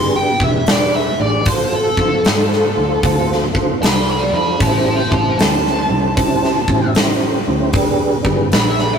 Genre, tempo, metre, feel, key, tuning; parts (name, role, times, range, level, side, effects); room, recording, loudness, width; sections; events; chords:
blues rock power trio and southern rock; 76 BPM; 4/4; swing 65% on 8ths; A4 = 437 Hz
dark smooth lead guitar; melody; 0.0-9.0 s; A4 to C6; -19 LUFS; equal; wah, overdrive
mellow tonewheel organ; sustained chords; 0.0-9.0 s; C#4 to D5; -19 LUFS; right 2 dB; slow rotary speaker, chorus vibrato
vintage muted picked electric bass; bass; 0.0-9.0 s; E1 to G#2; -22 LUFS; equal
huge arena drum kit; drums; 0.4-8.9 s; hi-hat, kick drum, snare drum; -17 LUFS; left 1 dB
moderate small room reverb, RT60 0.6 s; rough rehearsal-room recording, warm saturation; -13 LUFS; side -7 dB against mid
0.0-9.0 A section
lead electric guitar solo 0.0-9.0
0.0 E7#9; 1.5 D7#9; 4.6 A7#9; 7.8 E7#9 (rootless)